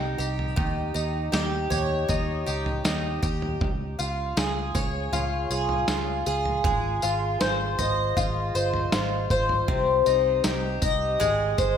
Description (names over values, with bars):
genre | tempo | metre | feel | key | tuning
dream pop | 79 BPM | 4/4 | straight | Ab major | A4 = 438 Hz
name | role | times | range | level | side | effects
picked twelve-string acoustic guitar | arpeggios | 0.0-11.8 s | C3 to Eb5 | -25 LUFS | left 2 dB | lush chorus, tape echo
vintage muted fingered electric bass | bass | 0.0-11.8 s | G1 to Eb2 | -30 LUFS | right 1 dB | none
dusty soul sampler-style drum kit | drums | 0.2-11.8 s | kick drum, snare drum, tambourine, toms | -29 LUFS | right 1 dB | none
room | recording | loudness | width
wet lush hall reverb, RT60 1.9 s | dreamy mix soaked in reverb | -23 LUFS | side -8 dB against mid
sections
0.0-11.8 A section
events
none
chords
0.0 Cm; 0.6 Eb7; 3.6 Db; 6.6 Ab6; 9.7 Cm; 11.2 Ab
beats
| 0.57 1.33 2.09 2.85 | 3.61 4.37 5.13 5.89 | 6.65 7.41 8.17 8.93 | 9.69 10.45 11.21